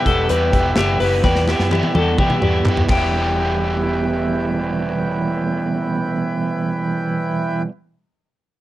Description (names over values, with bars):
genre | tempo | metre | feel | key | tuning
jangly indie pop | 127 BPM | 4/4 | straight | E minor | A4 = 442 Hz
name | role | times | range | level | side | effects
crunchy overdriven guitar | accompaniment | 0.0-7.7 s | E2 to G4 | -21 LUFS | right 3 dB | harmonic tremolo
hand-pumped harmonium | sustained chords | 0.0-7.6 s | E3 to B5 | -25 LUFS | right 1 dB | none
twelve-string electric guitar | arpeggios | 0.0-4.5 s | E4 to B4 | -21 LUFS | left 3 dB | ping-pong delay
vintage muted fingered electric bass | bass | 0.1-7.6 s | E1 to E3 | -23 LUFS | equal | none
modern studio drum kit | drums | 0.1-3.0 s | crash cymbal, hi-hat, kick drum, snare drum, toms | -21 LUFS | equal | none
group handclap | percussion | 0.8-3.3 s | none | -33 LUFS | right 2 dB | none
room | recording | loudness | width
light reverb | worn, warbling old tape, cassette tape, warbly pitch drift | -16 LUFS | side -14 dB against mid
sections
0.0-3.1 A section; 3.1-6.9 B section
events
drum fill 1.2-3.1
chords
0.0 Em